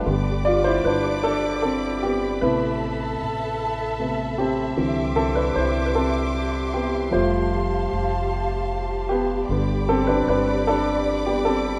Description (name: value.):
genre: six-eight pop ballad.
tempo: 51 BPM (dotted quarters).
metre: 6/8.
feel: straight.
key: unclear.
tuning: A4 = 444 Hz.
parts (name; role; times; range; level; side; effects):
warm upright piano; accompaniment; 0.0-11.8 s; C3 to D5; -25 LUFS; equal; none.
warm studio string section; sustained chords; 0.0-11.8 s; G4 to D6; -30 LUFS; equal; none.
upright bass; bass; 0.0-11.8 s; F1 to C2; -31 LUFS; equal; none.
room: moderate lush hall reverb, RT60 2.7 s.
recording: rough home demo mix.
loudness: -23 LUFS.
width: mono.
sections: 0.0-11.8 A section.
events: upright piano solo 0.0-11.8.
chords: 0.1 G; 2.4 Amadd9; 4.8 Cadd9; 7.1 Fadd9; 9.5 G.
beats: | 0.07 1.24 | 2.42 3.60 | 4.78 5.96 | 7.14 8.32 | 9.49 10.67.